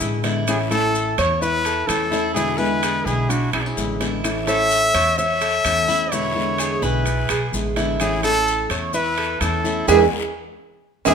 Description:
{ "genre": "latin, Cuban son and guajira", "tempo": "128 BPM", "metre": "4/4", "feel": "straight", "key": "A major", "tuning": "A4 = 436 Hz", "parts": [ { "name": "clear trumpet", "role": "melody", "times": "0.0-11.1 s", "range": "D4 to E5", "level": "-21 LUFS", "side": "left 1 dB", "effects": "none" }, { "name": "nylon-string guitar", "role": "second line", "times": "0.0-11.1 s", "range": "B3 to C#5", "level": "-27 LUFS", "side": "equal", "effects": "none" }, { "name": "nylon-string guitar", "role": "accompaniment", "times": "0.0-11.1 s", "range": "B2 to E4", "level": "-26 LUFS", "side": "left 3 dB", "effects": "none" }, { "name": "Cuban tres", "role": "arpeggios", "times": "0.0-11.1 s", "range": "E4 to E5", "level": "-25 LUFS", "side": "right 6 dB", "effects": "none" }, { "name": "upright bass", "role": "bass", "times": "0.0-11.1 s", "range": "A1 to E2", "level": "-26 LUFS", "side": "left 1 dB", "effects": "none" }, { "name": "guiro", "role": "percussion", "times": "0.0-11.1 s", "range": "none", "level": "-34 LUFS", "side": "left 5 dB", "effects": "none" }, { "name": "maracas", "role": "percussion", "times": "0.0-11.1 s", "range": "none", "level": "-33 LUFS", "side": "left 4 dB", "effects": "none" }, { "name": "timbales", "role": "percussion", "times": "0.2-11.1 s", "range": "none", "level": "-28 LUFS", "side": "right 6 dB", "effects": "none" }, { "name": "claves", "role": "percussion", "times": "0.5-11.1 s", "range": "none", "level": "-34 LUFS", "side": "left 5 dB", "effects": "none" } ], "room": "moderate large studio reverb, RT60 1.2 s", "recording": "minimal, uncompressed stereo recording", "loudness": "-17 LUFS", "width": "side -6 dB against mid", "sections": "0.0-11.1 A section", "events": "band accent 9.9-11.1", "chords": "0.5 A; 2.4 E7; 4.2 A; 6.1 E7; 8.0 A; 9.9 E", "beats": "0.01 | 0.48 0.95 1.42 1.89 | 2.36 2.83 3.30 3.77 | 4.24 4.71 5.18 5.65 | 6.12 6.59 7.06 7.53 | 8.00 8.47 8.95 9.42 | 9.89 10.36 10.83" }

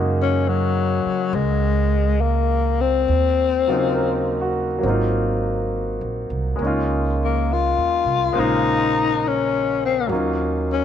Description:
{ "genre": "jazz ballad", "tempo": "69 BPM", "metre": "4/4", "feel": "swing 68% on 8ths", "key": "unclear", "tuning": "A4 = 439 Hz", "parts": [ { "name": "clear grand piano", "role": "accompaniment", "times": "0.0-10.8 s", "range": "Db3 to C5", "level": "-23 LUFS", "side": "equal", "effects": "none" }, { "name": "upright bass", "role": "bass", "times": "0.0-10.8 s", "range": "Ab1 to Gb2", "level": "-23 LUFS", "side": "right 2 dB", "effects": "none" }, { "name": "growling tenor saxophone", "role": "melody", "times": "0.2-10.8 s", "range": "Gb3 to F4", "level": "-20 LUFS", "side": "left 7 dB", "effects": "none" } ], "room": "light reverb, small room ambience", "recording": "none", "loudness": "-18 LUFS", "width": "side -9 dB against mid", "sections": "0.0-10.8 A section", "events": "none", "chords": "0.0 Gb69; 3.1 Ebm9; 4.8 Ab13; 6.6 Db69; 8.3 Bbm9; 10.1 Ebm7", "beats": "0.46 1.33 2.20 | 3.08 3.95 4.83 5.71 | 6.59 7.47 8.35 9.22 | 10.10" }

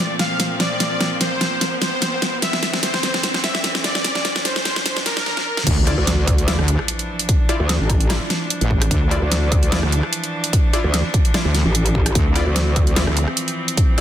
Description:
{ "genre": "heavy wobble dubstep", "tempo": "148 BPM", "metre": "4/4", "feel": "swing 54% on 16ths, half-time", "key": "D minor", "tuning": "A4 = 440 Hz", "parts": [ { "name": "soft supersaw", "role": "melody", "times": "0.0-5.6 s", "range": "Bb4 to F5", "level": "-24 LUFS", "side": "equal", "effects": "ping-pong delay" }, { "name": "bright chamber string section", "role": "sustained chords", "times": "0.0-14.0 s", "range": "Bb2 to D4", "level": "-28 LUFS", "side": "equal", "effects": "sidechain pumping" }, { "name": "riser and impact", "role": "sound effects", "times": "0.0-7.3 s", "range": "none", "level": "-28 LUFS", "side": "equal", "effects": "none" }, { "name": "dubstep drum kit", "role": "drums", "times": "0.2-14.0 s", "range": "crash cymbal, hi-hat, rim click, snare drum", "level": "-21 LUFS", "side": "equal", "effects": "soft clipping on snare, small room reverb" }, { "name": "wobble bass", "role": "bass", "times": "5.7-13.3 s", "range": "A1 to D2", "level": "-18 LUFS", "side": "equal", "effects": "chorus, overdrive" }, { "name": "electronic kick drum", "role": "drums", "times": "5.7-13.9 s", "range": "none", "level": "-18 LUFS", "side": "equal", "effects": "small room reverb" }, { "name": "supersaw stab", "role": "stabs", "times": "5.9-14.0 s", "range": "E4 to D5", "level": "-28 LUFS", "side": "left 3 dB", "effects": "ping-pong delay" }, { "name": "metallic wobble bass", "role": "bass", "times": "6.0-13.1 s", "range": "A1 to D2", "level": "-19 LUFS", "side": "equal", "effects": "chorus, overdrive" } ], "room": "light reverb, digital ambience", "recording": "dense, heavily limited modern master, high-pass filter", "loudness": "-16 LUFS", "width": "side -10 dB against mid", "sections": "0.0-5.7 A section; 5.7-14.0 B section", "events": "build-up 0.0-5.7; drum fill 0.0-5.3, 5.3-5.7; riser 0.0-5.3; drop 5.7-14.0; impact 5.7-7.3", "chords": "0.0 Bbsus2; 2.4 Cadd9; 5.7 Dmadd9", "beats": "0.40 | 0.80 1.21 1.61 2.02 | 2.42 2.83 3.23 3.64 | 4.04 4.45 4.86 5.26 | 5.67 6.07 6.48 6.88 | 7.29 7.69 8.10 8.50 | 8.91 9.31 9.72 10.13 | 10.53 10.94 11.34 11.75 | 12.15 12.56 12.96 13.37 | 13.78" }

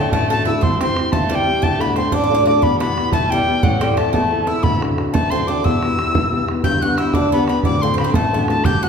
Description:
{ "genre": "celtic folk, Celtic jig", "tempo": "120 BPM (dotted quarters)", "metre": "6/8", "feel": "straight", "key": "E minor", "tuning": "A4 = 436 Hz", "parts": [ { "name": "tin whistle", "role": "melody", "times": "0.0-8.9 s", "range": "F#5 to G6", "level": "-21 LUFS", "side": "left 1 dB", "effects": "none" }, { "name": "Irish bouzouki", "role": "second line", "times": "0.0-8.9 s", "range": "F#3 to G4", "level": "-22 LUFS", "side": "right 2 dB", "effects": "none" }, { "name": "clear upright piano", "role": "accompaniment", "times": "0.0-8.9 s", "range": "D1 to A4", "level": "-20 LUFS", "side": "left 2 dB", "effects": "none" }, { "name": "bodhran", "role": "percussion", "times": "0.1-8.9 s", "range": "none", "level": "-21 LUFS", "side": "right 2 dB", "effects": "none" } ], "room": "wet recital hall reverb, RT60 1.4 s", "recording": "heard from further back in the room", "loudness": "-15 LUFS", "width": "side -6 dB against mid", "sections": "0.0-6.6 A section; 6.6-8.9 B section", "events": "none", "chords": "0.0 D; 0.6 C; 1.6 D; 2.6 Em; 3.6 Am; 4.6 D; 5.6 Em; 6.6 G; 7.6 D", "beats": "0.12 | 0.62 1.12 | 1.62 2.13 | 2.63 3.13 | 3.63 4.13 | 4.64 5.14 | 5.64 6.14 | 6.64 7.15 | 7.65 8.15 | 8.65" }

